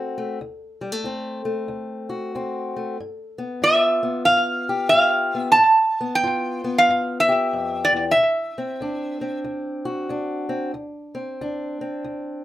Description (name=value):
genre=acoustic country blues, solo or duo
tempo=93 BPM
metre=4/4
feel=swing 62% on 8ths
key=unclear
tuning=A4 = 440 Hz
part: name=fingerpicked acoustic archtop guitar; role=accompaniment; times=0.0-12.4 s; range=D2 to G4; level=-26 LUFS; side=left 2 dB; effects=none
part: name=metal-body resonator slide guitar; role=melody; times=3.6-9.4 s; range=D5 to A5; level=-17 LUFS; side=right 1 dB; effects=slapback echo
room=wet studio ambience, RT60 0.5 s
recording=rough home demo mix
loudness=-19 LUFS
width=side -14 dB against mid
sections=0.0-12.4 A section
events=none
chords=0.0 D7; 3.0 G7; 8.2 D7